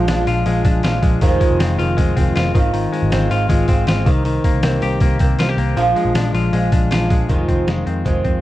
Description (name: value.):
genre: jangly indie pop.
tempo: 158 BPM.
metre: 4/4.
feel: straight.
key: unclear.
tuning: A4 = 440 Hz.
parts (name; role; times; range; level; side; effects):
fingerpicked twelve-string acoustic guitar; accompaniment; 0.0-8.4 s; F2 to G4; -22 LUFS; right 4 dB; none.
semi-hollow electric guitar; arpeggios; 0.0-8.4 s; Eb3 to G4; -21 LUFS; left 6 dB; tape echo.
vintage muted picked electric bass; bass; 0.0-8.4 s; F1 to F2; -19 LUFS; equal; none.
trip hop sampler-style drum kit; drums; 0.1-8.3 s; hi-hat, kick drum, snare drum; -18 LUFS; equal; overdrive.
room: little or no reverb.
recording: dry, close 1970s-style studio recording.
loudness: -14 LUFS.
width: side -15 dB against mid.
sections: 0.0-7.3 A section; 7.3-8.4 B section.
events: none.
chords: 0.0 Bb7; 1.2 Fm7; 2.5 Ab6; 4.1 Cm7; 5.8 Bb7; 7.3 Fm7.